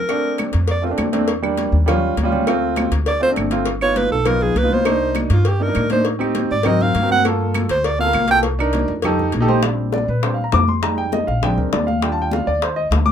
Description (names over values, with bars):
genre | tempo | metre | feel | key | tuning
Afro-Cuban jazz | 201 BPM | 4/4 | straight | Bb major | A4 = 440 Hz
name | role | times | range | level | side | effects
clear alto saxophone | melody | 0.0-0.9, 3.1-8.4 s | F4 to G5 | -18 LUFS | right 2 dB | none
warm concert grand piano | accompaniment | 0.1-13.1 s | G3 to D6 | -21 LUFS | right 2 dB | none
claves | percussion | 0.1-9.2 s | none | -29 LUFS | right 5 dB | none
congas | percussion | 0.1-13.1 s | none | -24 LUFS | left 2 dB | none
cowbell and bongos | percussion | 0.1-13.1 s | none | -26 LUFS | left 5 dB | none
upright bass | bass | 0.5-13.1 s | G1 to Bb2 | -21 LUFS | equal | none
room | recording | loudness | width
light reverb | minimal, uncompressed stereo recording | -16 LUFS | side -8 dB against mid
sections
0.1-9.6 A section; 9.6-13.1 A section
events
alto saxophone solo 0.0-9.6; grand piano solo 9.6-13.1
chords
0.1 Bbmaj9; 1.3 Em7b5; 1.9 Eb9; 2.5 Dm7; 3.7 Gaug7; 4.9 Cm9; 6.1 Am7b5; 6.7 Ab9; 7.2 Gm9; 8.4 Cm7; 9.0 F7; 9.6 Bb69; 10.8 Fm9; 11.4 Bb7; 12.0 Ebmaj9